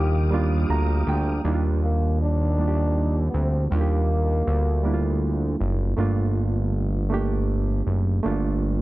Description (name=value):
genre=slow six-eight R&B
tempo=53 BPM (dotted quarters)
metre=6/8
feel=straight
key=unclear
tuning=A4 = 440 Hz
part: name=growling trombone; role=melody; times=0.0-5.2 s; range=Bb3 to G4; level=-29 LUFS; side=left 1 dB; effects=digital delay
part: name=barky reed electric piano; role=accompaniment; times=0.0-8.8 s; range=G3 to Bb5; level=-27 LUFS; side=right 4 dB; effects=overdrive
part: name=tonewheel organ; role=sustained chords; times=0.0-1.4 s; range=G4 to Eb6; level=-35 LUFS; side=left 1 dB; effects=chorus vibrato, slow rotary speaker
part: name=fat analog bass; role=bass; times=0.0-8.8 s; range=F#1 to Eb2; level=-22 LUFS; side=equal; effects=none
room=little or no reverb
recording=dark, warm production, lossy compression artefacts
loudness=-21 LUFS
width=side -17 dB against mid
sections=0.0-1.4 A section; 1.4-8.8 B section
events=reed electric piano fill 0.3-1.4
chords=0.0 Ebmaj9; 6.0 Gm9